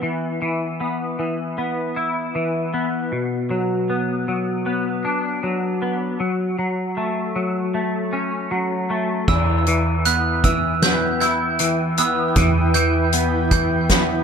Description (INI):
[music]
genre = post-rock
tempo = 78 BPM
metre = 4/4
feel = straight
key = E dorian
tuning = A4 = 438 Hz
[part]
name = twangy electric guitar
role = arpeggios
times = 0.0-14.2 s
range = B2 to E4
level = -21 LUFS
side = left 1 dB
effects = ensemble chorus, analog delay
[part]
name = granular cloud pad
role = sustained chords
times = 10.6-14.2 s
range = E3 to G5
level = -25 LUFS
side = right 1 dB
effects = built-in reverb
[part]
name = glockenspiel with brass mallets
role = arpeggios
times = 9.3-14.2 s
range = E6 to G6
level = -23 LUFS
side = right 8 dB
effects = analog delay
[part]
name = hollow-body short-scale picked electric bass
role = bass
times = 9.3-14.2 s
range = E2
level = -23 LUFS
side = right 1 dB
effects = none
[part]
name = soft-mallet drum kit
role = drums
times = 9.3-14.1 s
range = crash cymbal, hi-hat, kick drum, snare drum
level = -21 LUFS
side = equal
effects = none
[sound]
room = moderate large studio reverb, RT60 1.3 s, small room ambience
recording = none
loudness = -18 LUFS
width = side -7 dB against mid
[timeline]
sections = 0.0-9.3 A section; 9.3-14.2 A section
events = none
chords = 0.0 E5; 3.1 Bm; 6.2 F#m; 9.3 Em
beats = | 0.03 0.80 1.57 2.35 | 3.12 3.89 4.66 5.43 | 6.20 6.97 7.74 8.51 | 9.28 10.05 10.82 11.59 | 12.36 13.13 13.90